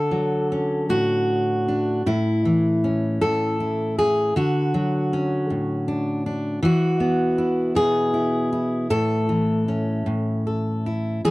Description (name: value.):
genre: folk, solo fingerstyle acoustic guitar.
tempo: 52 BPM (dotted quarters).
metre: 6/8.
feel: rubato.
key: A major.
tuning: A4 = 439 Hz.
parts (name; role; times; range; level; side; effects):
fingerpicked steel-string acoustic guitar; solo; 0.0-11.3 s; A2 to A4; -20 LUFS; equal; none.
room: light reverb.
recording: dry, close 1970s-style studio recording.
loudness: -20 LUFS.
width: side -20 dB against mid.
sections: 0.0-11.2 A section.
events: none.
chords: 0.0 Dmaj7; 2.1 A; 4.4 Dmaj7; 6.6 Eadd9; 8.9 A.